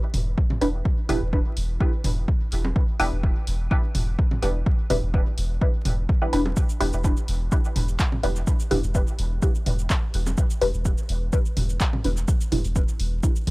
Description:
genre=dub techno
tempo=126 BPM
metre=4/4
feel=straight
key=E minor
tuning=A4 = 440 Hz
part: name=soft dub sub bass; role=bass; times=0.1-13.5 s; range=E1 to B1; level=-25 LUFS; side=equal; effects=sidechain pumping
part: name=punchy analog drum machine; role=drums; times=0.1-13.5 s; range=handclaps, hi-hat, shaker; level=-33 LUFS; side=equal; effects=none
part: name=electronic toms and bongos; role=percussion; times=0.1-13.5 s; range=none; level=-31 LUFS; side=equal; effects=sidechain pumping on toms, sidechain pumping on perc, dub echo
part: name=electronic kick drum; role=drums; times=0.4-13.3 s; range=none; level=-22 LUFS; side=equal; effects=none
part: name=filtered dub chord stab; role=stabs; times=0.6-12.6 s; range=D4 to B4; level=-28 LUFS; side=equal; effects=phaser, sidechain pumping, dub echo
room=little or no reverb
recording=dry, gritty hardware recording, vinyl crackle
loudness=-21 LUFS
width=side -21 dB against mid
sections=0.0-13.5 A section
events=filter sweep on synth stab 0.0-13.5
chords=0.0 Em7

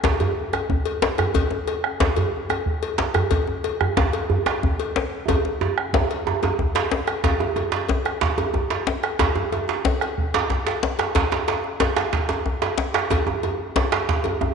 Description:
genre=west african traditional, West African drum ensemble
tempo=122 BPM (dotted quarters)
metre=12/8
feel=straight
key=none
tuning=none
part: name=bombo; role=percussion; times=0.0-14.5 s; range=none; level=-26 LUFS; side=right 2 dB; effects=none
part: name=cowbell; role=percussion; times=0.0-14.4 s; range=none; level=-28 LUFS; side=left 7 dB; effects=none
part: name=djembe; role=percussion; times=0.0-14.5 s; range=none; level=-26 LUFS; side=left 4 dB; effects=none
part: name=djembe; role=percussion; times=0.0-14.5 s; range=none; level=-24 LUFS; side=right 6 dB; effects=none
room=wet echo chamber reverb, RT60 2.1 s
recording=1960s-style stereo with parts hard left and right, nothing above 10.7 kHz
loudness=-20 LUFS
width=side -6 dB against mid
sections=0.0-7.2 A section; 7.2-14.5 B section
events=drum fill 5.3-7.2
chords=none

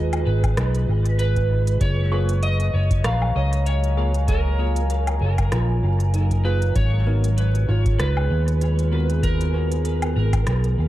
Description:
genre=ambient dub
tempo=97 BPM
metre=4/4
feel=swing 56% on 16ths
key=G# dorian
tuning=A4 = 443 Hz
part: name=electric slide guitar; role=melody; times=0.0-10.9 s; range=A#4 to E#5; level=-29 LUFS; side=right 2 dB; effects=tape echo
part: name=deep dark ambient pad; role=sustained chords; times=0.0-10.9 s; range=F#3 to A#5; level=-32 LUFS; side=equal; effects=chorus, built-in reverb
part: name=felt-muted upright piano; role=arpeggios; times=0.0-10.9 s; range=D#4 to C#6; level=-33 LUFS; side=right 3 dB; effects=tape echo
part: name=fingered electric bass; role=bass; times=0.0-10.9 s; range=F#1 to D#2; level=-20 LUFS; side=equal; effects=none
part: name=organic electronic drum kit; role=drums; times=0.1-10.8 s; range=hi-hat, rim click, woodblock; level=-31 LUFS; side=left 1 dB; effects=dub echo
part: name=electronic kick drum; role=drums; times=0.4-10.4 s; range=none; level=-25 LUFS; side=equal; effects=none
part: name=bell-like tine electric piano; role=stabs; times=2.1-9.8 s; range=A#3 to A#4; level=-35 LUFS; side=left 3 dB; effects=medium stereo tremolo, dub echo
room=light reverb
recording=vinyl crackle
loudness=-18 LUFS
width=side -15 dB against mid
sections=0.0-10.9 A section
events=none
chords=0.0 G#m; 1.8 F#maj7; 6.8 G#m7

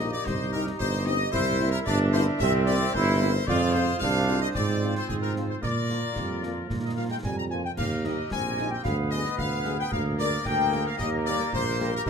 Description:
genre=military-style march for wind band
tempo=112 BPM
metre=2/4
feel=straight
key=Eb major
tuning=A4 = 440 Hz
part: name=bright trumpet section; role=melody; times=0.0-12.1 s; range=Ab4 to Bb5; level=-32 LUFS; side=left 3 dB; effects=none
part: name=mellow flute section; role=second line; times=0.0-12.1 s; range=Ab4 to Bb5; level=-32 LUFS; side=left 3 dB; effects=none
part: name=warm woodwind section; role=second line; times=0.0-12.1 s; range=F4 to E5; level=-35 LUFS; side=left 1 dB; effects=none
part: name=dark French horn section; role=accompaniment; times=0.0-11.9 s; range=F3 to Bb4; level=-35 LUFS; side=left 5 dB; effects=none
part: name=bright trombone section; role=sustained chords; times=0.0-12.1 s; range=Bb3 to F4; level=-32 LUFS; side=right 2 dB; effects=none
part: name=mellow tuba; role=bass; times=0.0-12.1 s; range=G1 to Bb2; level=-27 LUFS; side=right 3 dB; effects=none
part: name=concert snare drum, concert bass drum and clash cymbals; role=drums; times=0.0-12.1 s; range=none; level=-36 LUFS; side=left 1 dB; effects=none
part: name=warm euphonium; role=second line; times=6.2-7.8 s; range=F3 to Bb3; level=-37 LUFS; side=right 5 dB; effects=none
room=moderate large studio reverb, RT60 0.9 s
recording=none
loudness=-24 LUFS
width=side -6 dB against mid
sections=0.0-12.1 A section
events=none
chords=0.3 Cm; 1.3 C7; 3.5 Fm; 4.6 Fm/Ab; 5.6 Bb; 7.8 Eb; 8.9 G7b9b13/D (rootless); 9.9 Bb7/D; 11.0 Eb

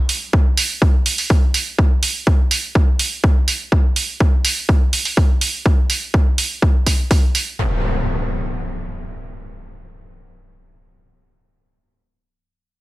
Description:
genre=progressive house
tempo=124 BPM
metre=4/4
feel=straight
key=none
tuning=none
part: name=electronic hi-hat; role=drums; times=0.1-7.4 s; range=none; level=-19 LUFS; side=right 3 dB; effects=overdrive, sidechain pumping on hats, sidechain pumping on perc
part: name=electronic kick drum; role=drums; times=0.3-7.2 s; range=none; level=-14 LUFS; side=equal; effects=overdrive
part: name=impact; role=sound effects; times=7.6-10.8 s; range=none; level=-23 LUFS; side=equal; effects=none
room=digital ambience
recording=none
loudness=-15 LUFS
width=side -18 dB against mid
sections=0.0-7.6 A section; 7.6-11.5 B section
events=none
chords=none

